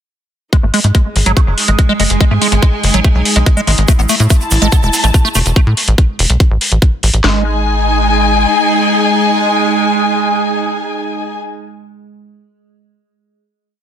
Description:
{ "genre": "psychedelic trance", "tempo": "143 BPM", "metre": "4/4", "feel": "straight", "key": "unclear", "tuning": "A4 = 441 Hz", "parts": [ { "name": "evolving wavetable pad", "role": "sustained chords", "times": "1.1-11.4 s", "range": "G#3", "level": "-19 LUFS", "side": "right 3 dB", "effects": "phaser, built-in reverb, sidechain pumping" }, { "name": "liquid acid bass", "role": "riff", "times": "0.5-7.4 s", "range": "F#3 to B3", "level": "-18 LUFS", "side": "right 1 dB", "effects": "phaser, auto-pan, sidechain pumping, digital delay" }, { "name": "drum and bass drum kit", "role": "drums", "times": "0.5-7.3 s", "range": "kick drum, snare drum", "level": "-10 LUFS", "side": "equal", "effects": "none" }, { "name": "electronic hi-hat", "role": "drums", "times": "0.5-7.2 s", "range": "none", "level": "-16 LUFS", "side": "left 1 dB", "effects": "none" }, { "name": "dark studio string section", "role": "texture", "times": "0.5-11.4 s", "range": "D#4 to A5", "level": "-16 LUFS", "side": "left 2 dB", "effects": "sidechain pumping" }, { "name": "tight sequencer bass", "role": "bass", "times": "0.6-8.5 s", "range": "E1 to A2", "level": "-13 LUFS", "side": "equal", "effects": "none" }, { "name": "tube shaker", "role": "percussion", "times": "3.9-5.5 s", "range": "none", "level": "-22 LUFS", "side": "right 4 dB", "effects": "none" } ], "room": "light reverb, digital ambience", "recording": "dense, heavily limited modern master", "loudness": "-10 LUFS", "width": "side -9 dB against mid", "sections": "0.5-7.2 groove; 7.2-10.6 final chord", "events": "fade-in on string section 0.5-5.6", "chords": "0.5 G#5; 3.9 A5; 7.2 G#5" }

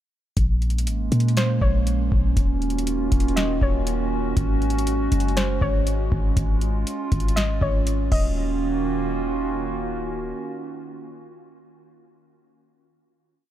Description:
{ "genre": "hip hop, atmospheric cloud-rap", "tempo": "120 BPM", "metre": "4/4", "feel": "half-time", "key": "Eb minor", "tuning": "A4 = 442 Hz", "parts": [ { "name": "warbly tape-like pad", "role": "sustained chords", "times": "0.7-11.9 s", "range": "Eb3 to Gb4", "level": "-26 LUFS", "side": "right 3 dB", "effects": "chorus, built-in reverb, sidechain pumping" }, { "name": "clean 808-style bass", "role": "bass", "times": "0.4-10.3 s", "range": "Eb1 to Bb2", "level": "-23 LUFS", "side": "equal", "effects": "none" }, { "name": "booming analog drum machine", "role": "drums", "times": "0.4-8.3 s", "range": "crash cymbal, hi-hat, kick drum, snare drum", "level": "-24 LUFS", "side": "equal", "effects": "overdrive" }, { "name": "soft round pluck", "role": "melody", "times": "1.4-9.8 s", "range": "C5 to Eb5", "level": "-31 LUFS", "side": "left 2 dB", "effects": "chorus, low-pass filter, digital delay" } ], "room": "digital ambience", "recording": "none", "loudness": "-20 LUFS", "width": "side -12 dB against mid", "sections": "0.4-8.4 verse; 8.4-12.4 final hit", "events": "none", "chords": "0.4 Bbm7; 2.4 Ebm7; 4.4 Ab7sus4; 8.1 Ebm7" }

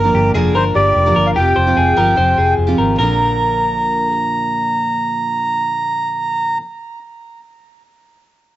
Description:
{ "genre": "indie pop", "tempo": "148 BPM", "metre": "4/4", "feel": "straight", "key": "Bb mixolydian", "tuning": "A4 = 439 Hz", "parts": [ { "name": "melodica", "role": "melody", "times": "0.0-6.6 s", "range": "Bb4 to Bb5", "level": "-16 LUFS", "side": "right 1 dB", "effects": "cassette tape, plate reverb" }, { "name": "picked steel-string acoustic guitar", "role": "accompaniment", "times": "0.0-6.7 s", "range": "G2 to Bb4", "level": "-21 LUFS", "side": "right 3 dB", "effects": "cassette tape, plate reverb" }, { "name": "twelve-string electric guitar", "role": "arpeggios", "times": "0.0-4.2 s", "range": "G4 to C5", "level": "-20 LUFS", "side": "left 4 dB", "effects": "cassette tape, plate reverb, tape echo" }, { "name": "vintage muted fingered electric bass", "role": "bass", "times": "0.0-6.6 s", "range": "F1 to Bb1", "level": "-19 LUFS", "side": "left 1 dB", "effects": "none" } ], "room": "moderate booth ambience, RT60 0.2 s", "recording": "home recording on cassette, nothing above 7.8 kHz", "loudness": "-13 LUFS", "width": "side -14 dB against mid", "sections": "0.0-3.0 A section; 3.0-6.2 B section", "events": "none", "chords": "0.0 Gm7; 1.4 Fsus2; 3.0 Bb" }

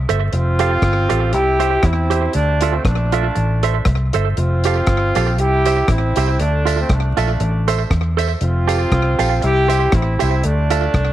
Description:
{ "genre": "ska", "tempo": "119 BPM", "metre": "4/4", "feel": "swing 55% on 8ths", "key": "F major", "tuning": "A4 = 439 Hz", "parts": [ { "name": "vintage muted fingered electric bass", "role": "bass", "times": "0.0-11.1 s", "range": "F1 to E2", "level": "-18 LUFS", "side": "equal", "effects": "none" }, { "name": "semi-hollow electric guitar", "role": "accompaniment", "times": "0.1-10.8 s", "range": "F4 to F5", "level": "-22 LUFS", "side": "right 9 dB", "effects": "slapback echo" }, { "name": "deep reggae drum kit", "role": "drums", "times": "0.1-11.1 s", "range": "hi-hat, kick drum, rim click", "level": "-21 LUFS", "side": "equal", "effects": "slapback echo" }, { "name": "mellow horn section", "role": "melody", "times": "0.3-11.1 s", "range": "A3 to G4", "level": "-19 LUFS", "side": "equal", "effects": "none" }, { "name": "tambourine", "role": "percussion", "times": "4.6-10.8 s", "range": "none", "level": "-34 LUFS", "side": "left 13 dB", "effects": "slapback echo" } ], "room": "light reverb, studio reverb", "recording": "1960s-style stereo with parts hard left and right, vinyl crackle", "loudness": "-14 LUFS", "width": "side -13 dB against mid", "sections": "0.0-11.1 A section", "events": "none", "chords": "0.3 Fadd9; 1.3 C; 2.3 Dmadd9; 3.4 Am; 4.4 Fadd9; 5.4 C; 6.4 Dmadd9; 7.4 Am; 8.4 Fadd9; 9.4 C; 10.4 Dmadd9" }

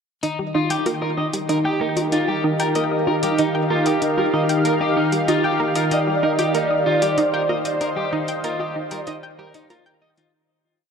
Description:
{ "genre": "ambient, sequencer-driven space music", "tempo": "95 BPM", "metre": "4/4", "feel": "straight", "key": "Eb major", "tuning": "A4 = 441 Hz", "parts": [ { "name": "lush unison pad", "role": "sustained chords", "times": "0.2-10.3 s", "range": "Eb3 to F5", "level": "-22 LUFS", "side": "equal", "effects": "chorus" }, { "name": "electric guitar at the edge of break-up", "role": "arpeggios", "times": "0.2-10.3 s", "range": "Eb4 to Eb5", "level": "-25 LUFS", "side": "moving between left 4 dB and right 2 dB", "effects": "auto-pan, tape echo" }, { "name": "analog pluck", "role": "riff", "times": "0.2-10.2 s", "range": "Eb4 to G5", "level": "-25 LUFS", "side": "right 2 dB", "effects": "chorus, tape echo" }, { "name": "electronic hi-hat and bongos", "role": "percussion", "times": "0.2-10.3 s", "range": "none", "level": "-30 LUFS", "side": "left 1 dB", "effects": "tape echo" }, { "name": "expressive synth lead", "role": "melody", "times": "5.9-9.7 s", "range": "D5 to Eb5", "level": "-23 LUFS", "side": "equal", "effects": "ensemble chorus, tape echo" } ], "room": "wet cathedral reverb, RT60 5.3 s", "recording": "in a vast, echoing space, cassette tape", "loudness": "-18 LUFS", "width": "side -6 dB against mid", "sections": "0.2-10.3 A section", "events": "filter sweep on synth arpeggio sound 0.2-10.3; fade-out 7.0-10.3", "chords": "0.2 Ebadd9" }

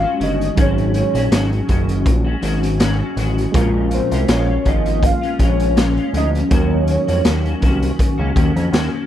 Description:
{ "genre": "indie pop, bedroom pop", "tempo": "81 BPM", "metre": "4/4", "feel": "swing 55% on 16ths", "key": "unclear", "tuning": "A4 = 440 Hz", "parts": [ { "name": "warm velvety synth lead", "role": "melody", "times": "0.0-8.0 s", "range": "C5 to F5", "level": "-22 LUFS", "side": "equal", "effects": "tremolo, lush chorus, slapback echo" }, { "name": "reed electric piano", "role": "accompaniment", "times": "0.0-9.1 s", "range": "Gb3 to Bb4", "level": "-27 LUFS", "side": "right 6 dB", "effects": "cassette tape" }, { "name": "semi-hollow electric guitar", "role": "accompaniment", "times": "0.0-9.1 s", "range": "Ab2 to Gb4", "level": "-22 LUFS", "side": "left 3 dB", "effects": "ensemble chorus, vibrato effect" }, { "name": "granular cloud pad", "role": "sustained chords", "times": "0.0-9.1 s", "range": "Eb3 to Gb4", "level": "-26 LUFS", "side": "left 1 dB", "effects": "built-in reverb" }, { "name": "fat analog bass", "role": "bass", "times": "0.0-8.9 s", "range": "Gb1 to F2", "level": "-19 LUFS", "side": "equal", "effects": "none" }, { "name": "raw garage drum kit", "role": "drums", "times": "0.2-8.9 s", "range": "hi-hat, kick drum, snare drum", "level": "-19 LUFS", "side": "equal", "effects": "none" } ], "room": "little or no reverb", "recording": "none", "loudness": "-14 LUFS", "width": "side -11 dB against mid", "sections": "0.0-9.1 A section", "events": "none", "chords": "0.0 Ab7sus4; 3.5 Bbm7; 6.5 Ebm7" }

